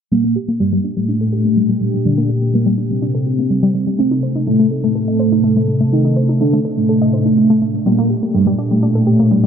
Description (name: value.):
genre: techno.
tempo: 124 BPM.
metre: 4/4.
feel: straight.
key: G minor.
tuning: A4 = 440 Hz.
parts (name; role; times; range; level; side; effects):
fat analog lead; melody; 0.1-9.5 s; G3 to Eb4; -16 LUFS; equal; phaser, wide subtle chorus, tape echo.
warm analog pad; sustained chords; 0.1-9.5 s; Bb2 to A4; -18 LUFS; equal; chorus.
warbly dusty pluck; arpeggios; 0.1-9.5 s; G3 to Eb5; -19 LUFS; left 1 dB; chorus, ping-pong delay.
room: moderate huge ambient reverb, RT60 8.2 s.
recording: dark, warm production, low-pass filter.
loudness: -13 LUFS.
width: side -8 dB against mid.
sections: 0.1-9.5 A section.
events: filter sweep on synth arpeggio sound 0.1-9.5; filter sweep on analog synth lead 0.1-9.5; filter sweep on analog synth pad 0.1-9.5; filter sweep 0.1-9.5.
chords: 0.1 Gmadd9; 4.0 Adim; 7.9 Gmadd9.